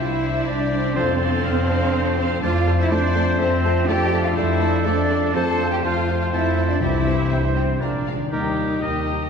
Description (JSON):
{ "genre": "cinematic, heroic adventure film score", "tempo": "123 BPM", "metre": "3/4", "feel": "straight", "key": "unclear", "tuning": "A4 = 438 Hz", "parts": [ { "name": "rich symphonic violin section", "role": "melody", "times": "0.0-9.3 s", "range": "C5 to Bb5", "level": "-33 LUFS", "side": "left 4 dB", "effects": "none" }, { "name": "clear oboe", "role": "second line", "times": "0.0-9.3 s", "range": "G4 to F5", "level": "-30 LUFS", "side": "right 1 dB", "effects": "none" }, { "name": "hollow concert flute", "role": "second line", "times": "0.0-9.1 s", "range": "Eb4 to A5", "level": "-29 LUFS", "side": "left 1 dB", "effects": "none" }, { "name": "warm symphonic violin section", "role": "second line", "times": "0.0-9.3 s", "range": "Bb3 to Bb5", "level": "-33 LUFS", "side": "left 3 dB", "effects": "none" }, { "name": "rich symphonic viola section", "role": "accompaniment", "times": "0.0-9.3 s", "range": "Ab3 to A4", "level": "-30 LUFS", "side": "right 2 dB", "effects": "none" }, { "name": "concert harp", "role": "arpeggios", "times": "0.0-9.3 s", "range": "Bb2 to D6", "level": "-28 LUFS", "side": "left 6 dB", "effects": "none" }, { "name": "rich symphonic cello section", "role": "bass", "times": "0.0-9.3 s", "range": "Eb2 to A4", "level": "-26 LUFS", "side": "right 2 dB", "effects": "none" }, { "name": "rich symphonic double bass section", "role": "bass", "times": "0.0-9.2 s", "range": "Bb1 to F2", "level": "-24 LUFS", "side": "equal", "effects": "none" }, { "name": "bright trombone section", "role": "sustained chords", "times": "1.0-8.5 s", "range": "F2 to Eb4", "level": "-30 LUFS", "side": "right 2 dB", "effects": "none" }, { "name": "mellow French horn section", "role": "sustained chords", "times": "1.0-9.3 s", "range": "G3 to F4", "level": "-30 LUFS", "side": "left 4 dB", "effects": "none" }, { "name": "clear trumpet", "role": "stabs", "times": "1.0-8.5 s", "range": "A4 to C5", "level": "-29 LUFS", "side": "right 2 dB", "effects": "none" }, { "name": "timpani", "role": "percussion", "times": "6.8-7.5 s", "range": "C3", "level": "-27 LUFS", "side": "left 4 dB", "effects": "none" } ], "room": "wet scoring stage reverb, RT60 2.1 s", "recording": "heard from further back in the room", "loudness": "-18 LUFS", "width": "side -6 dB against mid", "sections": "0.0-8.3 A section", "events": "none", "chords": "0.0 Cadd9; 1.0 F6; 2.4 F; 3.9 Dm/F; 6.8 C; 7.8 Bb7; 8.3 Eb", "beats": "0.47 | 0.96 1.45 1.94 | 2.43 2.92 3.40 | 3.89 4.38 4.87 | 5.35 5.84 6.33 | 6.82 7.32 7.82 | 8.32 8.81" }